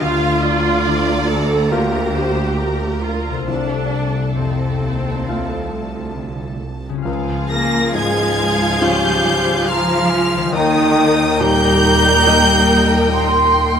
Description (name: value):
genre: cinematic, emotional film score for orchestra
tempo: 68 BPM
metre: 4/4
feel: uneven beats, rubato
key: unclear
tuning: A4 = 438 Hz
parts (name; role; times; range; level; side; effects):
- warm studio violin section; melody; 0.0-13.6 s; A5 to Bb6; -20 LUFS; equal; none
- warm studio violin section; second line; 0.0-13.8 s; Ab4 to G5; -24 LUFS; left 1 dB; none
- clear grand piano; accompaniment; 0.0-13.8 s; C2 to F5; -24 LUFS; left 2 dB; none
- warm studio viola section; accompaniment; 0.0-13.8 s; F3 to A4; -21 LUFS; equal; none
- concert harp; arpeggios; 0.0-13.8 s; C3 to F5; -28 LUFS; left 8 dB; none
- warm studio double bass section; bass; 0.0-13.8 s; C2 to Eb2; -24 LUFS; right 2 dB; none
- warm symphonic cello section; bass; 0.0-13.6 s; C2 to Bb3; -23 LUFS; right 1 dB; none
- small flute group; second line; 7.1-13.8 s; G5 to C6; -22 LUFS; right 3 dB; none
- dark clarinet; second line; 7.5-13.6 s; Eb4 to Bb4; -23 LUFS; equal; none
- dark French horn section; sustained chords; 7.5-13.5 s; Eb3 to Bb3; -23 LUFS; left 2 dB; none
room: moderate concert hall reverb, RT60 2.0 s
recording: none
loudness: -14 LUFS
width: side -8 dB against mid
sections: 0.0-7.1 A section; 7.1-13.8 A section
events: none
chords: 0.0 Bb/D; 3.5 F/C; 7.1 Db; 10.6 Eb